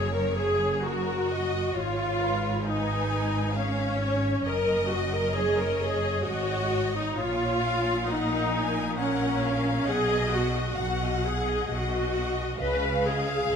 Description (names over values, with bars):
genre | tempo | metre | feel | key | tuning
classical, slow romantic movement for string orchestra | 66 BPM | 3/4 | rubato | F# major | A4 = 441 Hz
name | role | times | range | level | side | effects
rich studio violin section | melody | 0.0-13.6 s | A#4 to F#5 | -36 LUFS | left 4 dB | none
rich symphonic violin section | second line | 0.0-13.6 s | A#4 to G#5 | -34 LUFS | left 3 dB | none
rich symphonic viola section | accompaniment | 0.0-13.6 s | C#4 to B4 | -27 LUFS | equal | none
rich symphonic cello section | bass | 0.0-13.6 s | F#2 to C#3 | -33 LUFS | right 1 dB | none
rich symphonic double bass section | bass | 0.0-13.6 s | F#1 to C#2 | -33 LUFS | right 3 dB | none
room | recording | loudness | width
moderate scoring stage reverb, RT60 1.9 s | none | -24 LUFS | side -7 dB against mid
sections
0.0-13.6 A section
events
none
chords
0.0 F#; 1.8 C#7/G#; 4.5 F#5; 7.2 A#madd11; 9.9 B; 12.6 C#add9